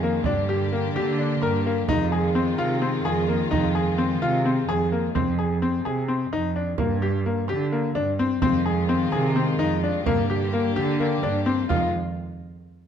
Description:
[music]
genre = contemporary instrumental, chamber music in an uneven meter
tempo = 257 BPM (eighths)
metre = 7/8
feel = straight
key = F dorian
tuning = A4 = 438 Hz
[part]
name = rich studio string section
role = sustained chords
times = 0.0-5.1, 8.4-11.9 s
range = D3 to G4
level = -28 LUFS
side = left 1 dB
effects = none
[part]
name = bright grand piano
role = arpeggios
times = 0.0-11.9 s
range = Bb3 to Bb4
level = -24 LUFS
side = left 4 dB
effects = none
[part]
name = muted cello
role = bass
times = 0.0-11.9 s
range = F2 to D3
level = -26 LUFS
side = right 4 dB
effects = none
[part]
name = frame drum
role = percussion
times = 0.2-11.9 s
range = none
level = -31 LUFS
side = right 6 dB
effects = none
[sound]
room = moderate recital hall reverb, RT60 1.3 s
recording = dark, warm production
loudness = -21 LUFS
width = side -8 dB against mid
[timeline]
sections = 0.0-5.2 A section; 5.2-11.7 B section; 11.7-12.9 C section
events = none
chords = 0.3 Gm; 1.9 Fm7; 5.2 Fm; 6.8 Gm; 8.4 Fm7; 10.1 Gm; 11.7 Fm7

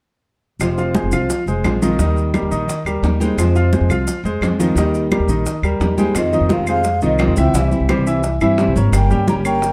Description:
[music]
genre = latin, Cuban son and guajira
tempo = 173 BPM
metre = 4/4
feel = straight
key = F minor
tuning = A4 = 441 Hz
[part]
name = nylon-string guitar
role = accompaniment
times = 0.6-9.7 s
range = C3 to G4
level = -23 LUFS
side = equal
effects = none
[part]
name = upright bass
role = bass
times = 0.6-9.7 s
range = F1 to G2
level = -21 LUFS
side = equal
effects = none
[part]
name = bongos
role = percussion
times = 0.6-9.7 s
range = none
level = -29 LUFS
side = equal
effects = none
[part]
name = claves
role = percussion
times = 0.6-9.6 s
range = none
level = -31 LUFS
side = equal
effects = none
[part]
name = congas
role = percussion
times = 0.6-9.7 s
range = none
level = -26 LUFS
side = equal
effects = none
[part]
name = maracas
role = percussion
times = 0.6-9.7 s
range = none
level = -36 LUFS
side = equal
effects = none
[part]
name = clear grand piano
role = arpeggios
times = 0.8-9.7 s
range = Eb3 to G5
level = -23 LUFS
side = equal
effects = none
[part]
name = baroque flute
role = melody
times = 6.2-9.7 s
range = Eb5 to Bb5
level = -23 LUFS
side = equal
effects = plate reverb
[sound]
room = light reverb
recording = dark, warm production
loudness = -17 LUFS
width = mono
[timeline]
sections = 0.6-6.2 A section; 6.2-9.7 B section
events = none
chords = 0.6 Fm; 2.0 Eb; 3.4 Fm; 4.8 Eb; 6.2 Fm7; 7.5 C; 8.9 Gdim

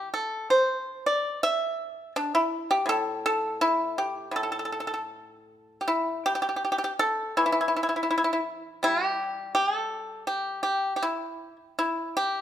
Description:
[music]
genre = chinese traditional, Chinese solo plucked strings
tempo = 75-84 BPM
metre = 2/4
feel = rubato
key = A yu mode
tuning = A4 = 440 Hz
[part]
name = pipa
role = solo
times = 0.0-12.4 s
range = A2 to E5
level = -25 LUFS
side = equal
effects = none
[sound]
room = moderate recital hall reverb, RT60 1.6 s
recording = minimal, uncompressed stereo recording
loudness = -25 LUFS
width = side -10 dB against mid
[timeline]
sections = 0.0-5.9 A section; 5.9-12.4 B section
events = none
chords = none

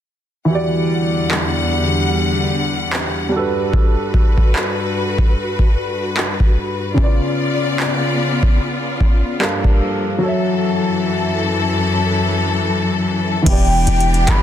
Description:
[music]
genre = contemporary R&B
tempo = 74 BPM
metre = 4/4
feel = swing 58% on 16ths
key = E dorian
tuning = A4 = 440 Hz
[part]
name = warm baby grand piano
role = accompaniment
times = 0.5-14.4 s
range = C#3 to F5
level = -21 LUFS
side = equal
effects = none
[part]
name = clear studio string section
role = sustained chords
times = 0.5-14.4 s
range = E2 to F#5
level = -19 LUFS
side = left 2 dB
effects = none
[part]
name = booming analog drum machine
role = drums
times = 1.3-14.4 s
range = crash cymbal, handclaps, hi-hat, kick drum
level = -16 LUFS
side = equal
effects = overdrive
[part]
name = hollow clarinet-like synth lead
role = melody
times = 13.5-14.4 s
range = G5 to B5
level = -19 LUFS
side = equal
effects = chorus
[part]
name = warm 808-style bass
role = bass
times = 13.5-14.4 s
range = E1 to G1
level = -16 LUFS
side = equal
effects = none
[sound]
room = light reverb, digital ambience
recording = dense, heavily limited modern master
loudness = -15 LUFS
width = side -10 dB against mid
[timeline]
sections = 0.5-13.5 A section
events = drums muted 10.2-13.5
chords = 0.5 Em9; 3.3 Gmaj7; 7.0 C#7b9; 9.4 Gm7; 10.2 F#m7; 13.5 Em7

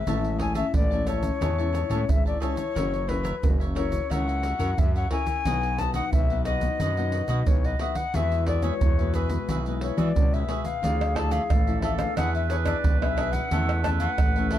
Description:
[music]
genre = samba and choro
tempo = 89 BPM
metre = 4/4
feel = straight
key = A major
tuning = A4 = 440 Hz
[part]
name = reedy concert flute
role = melody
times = 0.0-14.6 s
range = B4 to A5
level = -30 LUFS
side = left 6 dB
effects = none
[part]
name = cavaquinho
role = accompaniment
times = 0.0-14.6 s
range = D4 to A5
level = -36 LUFS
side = right 5 dB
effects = none
[part]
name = nylon-string guitar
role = accompaniment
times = 0.0-14.6 s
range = A2 to A#4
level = -33 LUFS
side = left 5 dB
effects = none
[part]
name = growling FM bass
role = bass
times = 0.0-14.6 s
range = F#1 to E3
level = -27 LUFS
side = equal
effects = none
[part]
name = egg shaker, surdo, pandeiro and tamborim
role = percussion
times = 0.1-14.6 s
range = none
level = -26 LUFS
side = right 1 dB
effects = none
[part]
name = clear clarinet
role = second line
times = 10.8-14.6 s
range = G#4 to B4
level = -32 LUFS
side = right 8 dB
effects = none
[sound]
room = light reverb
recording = dark, warm production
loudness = -22 LUFS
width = side -12 dB against mid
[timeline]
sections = 0.0-10.8 A section; 10.8-14.6 B section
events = none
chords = 0.1 Amaj7; 2.8 F#7; 5.5 B; 8.1 Eadd9; 10.8 Dmadd9; 12.2 E7; 13.5 A/E

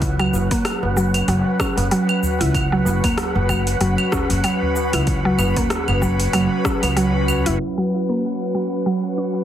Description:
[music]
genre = organic downtempo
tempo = 95 BPM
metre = 4/4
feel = swing 56% on 16ths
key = unclear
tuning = A4 = 440 Hz
[part]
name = airy breathy pad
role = sustained chords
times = 0.0-9.4 s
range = F#3 to B4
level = -24 LUFS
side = equal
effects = chorus, sidechain pumping
[part]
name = upright bass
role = bass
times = 0.0-7.6 s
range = F#1 to C#2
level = -21 LUFS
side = equal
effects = sidechain pumping
[part]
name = deep house drum kit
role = drums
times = 0.0-9.4 s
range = claves, hi-hat, rim click, shaker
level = -25 LUFS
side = equal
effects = overdrive, low-pass filter on perc, low-pass filter on snare, low-pass filter on hats, low-pass filter on room
[part]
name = electronic kick drum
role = drums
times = 0.0-6.8 s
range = none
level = -25 LUFS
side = equal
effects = overdrive
[part]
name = wind-like tuned noise texture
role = texture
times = 0.0-9.4 s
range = F#5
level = -30 LUFS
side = right 4 dB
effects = built-in reverb
[part]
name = mallet-like synth pluck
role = arpeggios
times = 0.2-9.3 s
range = F#3 to E4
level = -22 LUFS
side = right 1 dB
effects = chorus, digital delay
[part]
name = tabla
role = percussion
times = 0.3-7.6 s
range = none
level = -31 LUFS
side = right 1 dB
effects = none
[sound]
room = moderate lush hall reverb, RT60 1.6 s, digital ambience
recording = heavily compressed radio sound, multiband compression, low-pass filter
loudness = -17 LUFS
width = side -10 dB against mid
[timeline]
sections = 0.0-7.6 A section; 7.6-9.4 B section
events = filter sweep on synth pluck 7.6-9.4; filter sweep on analog synth pad 7.6-9.4; filter sweep 7.6-9.4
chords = 0.0 F#sus4

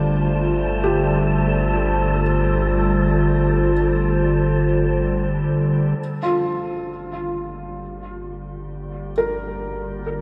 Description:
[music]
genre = ambient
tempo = free time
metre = none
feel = none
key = unclear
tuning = A4 = 440 Hz
[part]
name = warbly tape-like pad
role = sustained chords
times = 0.0-10.2 s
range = D3 to D5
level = -24 LUFS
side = equal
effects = chorus, built-in reverb
[part]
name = felt-muted upright piano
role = arpeggios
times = 0.0-10.2 s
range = F4 to Bb4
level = -28 LUFS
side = equal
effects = analog delay
[part]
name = warm sub bass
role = bass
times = 0.0-10.2 s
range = G1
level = -28 LUFS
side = equal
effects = none
[part]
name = organ-like drone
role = drone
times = 0.0-10.2 s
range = D3 to D4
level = -32 LUFS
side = equal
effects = ensemble chorus, built-in reverb
[part]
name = wind-like tuned noise texture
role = texture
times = 0.0-6.0 s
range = A4 to A5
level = -30 LUFS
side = equal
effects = built-in reverb, lush chorus
[sound]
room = wet lush hall reverb, RT60 3.3 s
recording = dreamy mix soaked in reverb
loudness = -20 LUFS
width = mono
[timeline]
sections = 0.0-6.0 A section; 6.0-10.2 A section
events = none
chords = 0.0 Dm7/G

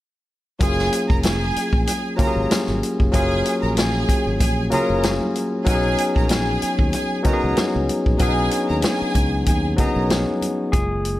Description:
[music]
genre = lush 1970s-style soul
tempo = 95 BPM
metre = 4/4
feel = swing 54% on 16ths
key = F# major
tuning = A4 = 435 Hz
[part]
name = warm studio violin section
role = second line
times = 0.6-10.0 s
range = G#4 to A#5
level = -26 LUFS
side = right 2 dB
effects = none
[part]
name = barky tine electric piano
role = accompaniment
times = 0.6-11.2 s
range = F#3 to G#4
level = -22 LUFS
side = left 2 dB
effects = none
[part]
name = fingered electric bass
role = bass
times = 0.6-11.2 s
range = E#1 to D#2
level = -24 LUFS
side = equal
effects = none
[part]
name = vintage drum kit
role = drums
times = 0.6-11.2 s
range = hi-hat, kick drum, snare drum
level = -22 LUFS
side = equal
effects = none
[part]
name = congas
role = percussion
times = 0.6-10.9 s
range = none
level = -31 LUFS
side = right 3 dB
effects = none
[sound]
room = light reverb, small room reverb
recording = none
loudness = -18 LUFS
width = side -15 dB against mid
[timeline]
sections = 0.6-10.7 A section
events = none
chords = 0.6 F#maj9; 5.7 B69

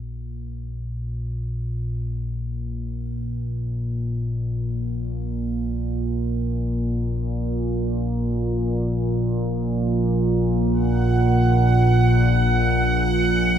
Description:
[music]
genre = dark ambient drone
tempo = free time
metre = none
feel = none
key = unclear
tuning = A4 = 444 Hz
[part]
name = analog drone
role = drone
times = 0.0-13.6 s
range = Bb1 to Bb2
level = -20 LUFS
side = equal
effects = chorus
[part]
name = bubbling stepped-filter texture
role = texture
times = 10.9-13.6 s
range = Gb5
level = -23 LUFS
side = right 4 dB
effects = chorus, built-in reverb
[sound]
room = wet cathedral reverb, RT60 6.4 s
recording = faint mains hum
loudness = -20 LUFS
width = side -9 dB against mid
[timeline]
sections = 0.0-13.6 A section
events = none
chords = 0.0 N.C.; 10.7 Gb/Bb

